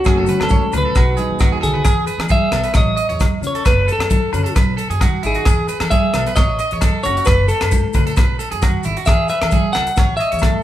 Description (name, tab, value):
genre	highlife guitar band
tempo	133 BPM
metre	4/4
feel	straight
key	E major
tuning	A4 = 444 Hz
part	clean electric guitar	melody	0.0-10.6 s	F#4 to F#5	-20 LUFS	equal	none
part	mellow electric guitar	accompaniment	0.0-10.6 s	E2 to F#4	-27 LUFS	left 4 dB	none
part	electric guitar at the edge of break-up	arpeggios	0.0-10.6 s	E4 to D#5	-24 LUFS	right 4 dB	none
part	maracas	percussion	0.0-10.5 s	none	-35 LUFS	left 7 dB	none
part	upright bass	bass	0.1-10.5 s	F#1 to E3	-23 LUFS	equal	none
part	tight funk drum kit	drums	0.1-10.5 s	hi-hat, kick drum, rim click	-17 LUFS	equal	none
part	agogo bells	percussion	0.1-10.5 s	none	-30 LUFS	left 5 dB	none
part	congas	percussion	0.1-10.5 s	none	-26 LUFS	right 3 dB	none
room	light reverb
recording	band playing live in one room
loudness	-14 LUFS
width	side -12 dB against mid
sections	0.0-1.9 A section; 1.9-10.6 B section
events	drum fill 1.5-1.9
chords	0.1 F#m; 1.0 B; 1.9 E; 2.8 A; 3.7 F#m; 4.6 B; 5.5 E; 6.4 A6; 7.3 F#m; 8.2 B; 9.1 E; 10.0 A6